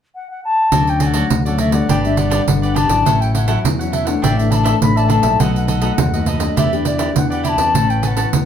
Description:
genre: samba and choro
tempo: 102 BPM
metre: 4/4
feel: straight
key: D major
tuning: A4 = 440 Hz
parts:
  - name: wooden flute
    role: melody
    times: 0.1-8.5 s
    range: D5 to B5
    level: -20 LUFS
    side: left 3 dB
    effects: none
  - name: cavaquinho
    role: accompaniment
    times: 0.7-8.3 s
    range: D4 to A5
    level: -24 LUFS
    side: right 5 dB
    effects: none
  - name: nylon-string guitar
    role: accompaniment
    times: 0.7-8.5 s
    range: F#2 to G4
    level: -20 LUFS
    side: left 4 dB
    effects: none
  - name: fingered electric bass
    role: bass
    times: 0.7-8.5 s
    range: G1 to E2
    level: -19 LUFS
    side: equal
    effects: none
  - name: pandeiro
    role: percussion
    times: 0.7-8.5 s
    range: none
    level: -19 LUFS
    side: right 3 dB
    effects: none
room: wet studio ambience, RT60 0.5 s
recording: heard from further back in the room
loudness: -13 LUFS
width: side -9 dB against mid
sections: 0.7-8.5 A section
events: none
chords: 0.0 N.C.; 0.7 Dmaj7; 1.9 G; 3.1 A6; 4.2 Dsus2/A; 5.4 B7; 6.6 Em7; 7.7 Aadd9

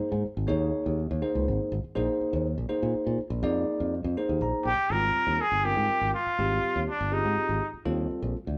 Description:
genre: electric jazz fusion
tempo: 82 BPM (dotted quarters)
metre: 6/8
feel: straight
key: Ab lydian from 4.9 s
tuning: A4 = 441 Hz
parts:
  - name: bell-like tine electric piano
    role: accompaniment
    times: 0.0-8.4 s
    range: G3 to Bb5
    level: -33 LUFS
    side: equal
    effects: none
  - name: fingered electric bass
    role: bass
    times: 0.0-8.6 s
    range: G1 to Bb2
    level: -32 LUFS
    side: equal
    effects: none
  - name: trumpet with straight mute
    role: melody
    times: 4.7-7.7 s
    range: D4 to Bb4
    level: -28 LUFS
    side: equal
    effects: none
room: moderate large studio reverb, RT60 0.9 s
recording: band playing live in one room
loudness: -28 LUFS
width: mono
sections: 0.0-4.9 A section; 4.9-8.6 B section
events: tine electric piano fill 4.2-4.9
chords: 0.0 Absus24; 2.0 Bb9sus4; 4.9 Abmaj9; 7.9 Ebmaj9

